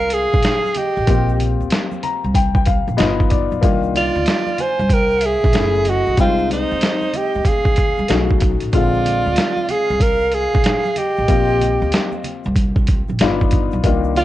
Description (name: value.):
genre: hip hop, jazz-hop.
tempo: 94 BPM.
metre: 4/4.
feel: swing 64% on 16ths.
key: unclear.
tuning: A4 = 441 Hz.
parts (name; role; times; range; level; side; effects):
breathy alto saxophone; melody; 0.0-14.2 s; Eb4 to C5; -18 LUFS; equal; cassette tape.
breathy jazz flute; second line; 0.0-14.2 s; C5 to Ab5; -26 LUFS; right 8 dB; cassette tape.
dark baby grand piano; accompaniment; 0.0-14.2 s; D3 to Bb5; -23 LUFS; left 7 dB; cassette tape.
upright bass; bass; 0.0-14.2 s; F#1 to Eb2; -22 LUFS; equal; none.
tube shaker and congas; percussion; 0.0-14.2 s; none; -34 LUFS; right 10 dB; none.
boom bap sampler-style drum kit; drums; 0.1-14.2 s; hi-hat, kick drum, snare drum; -18 LUFS; equal; cassette tape.
room: light reverb, small room reverb.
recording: home recording on cassette, nothing above 10.4 kHz.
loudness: -15 LUFS.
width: side -14 dB against mid.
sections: 0.0-14.2 A section.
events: grand piano fill 1.7-3.6.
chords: 0.0 Bb9 (rootless); 1.1 Bbsus2; 3.0 G7b13; 3.6 Cm11; 5.5 F#m7; 6.2 Fm7/C; 8.1 B9; 8.7 Bb9; 11.3 Eb6/Bb; 13.2 G7b13.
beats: 0.44 | 1.08 1.72 2.35 2.99 | 3.63 4.27 4.91 5.54 | 6.18 6.82 7.46 8.10 | 8.74 9.38 10.01 10.65 | 11.29 11.93 12.57 13.20 | 13.84.